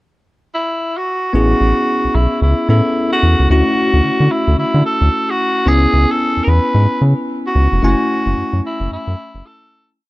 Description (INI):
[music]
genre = R&B, new jack swing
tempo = 111 BPM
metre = 4/4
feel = swing 61% on 16ths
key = A major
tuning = A4 = 440 Hz
[part]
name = breathy tenor saxophone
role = melody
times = 0.5-9.9 s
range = E4 to B4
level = -18 LUFS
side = equal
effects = none
[part]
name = bell-like tine electric piano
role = accompaniment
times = 1.3-10.0 s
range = A3 to G#5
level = -18 LUFS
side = left 1 dB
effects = none
[part]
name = round analog bass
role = bass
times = 1.3-9.4 s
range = F1 to D3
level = -13 LUFS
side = equal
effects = none
[sound]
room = small room ambience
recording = none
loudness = -12 LUFS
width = side -19 dB against mid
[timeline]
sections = 0.0-1.3 pickup bar; 1.3-10.0 verse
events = fade-out 7.8-10.0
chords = 0.0 N.C.; 1.3 Amaj7; 3.5 Dmaj9; 5.7 C#m7; 7.8 F#m9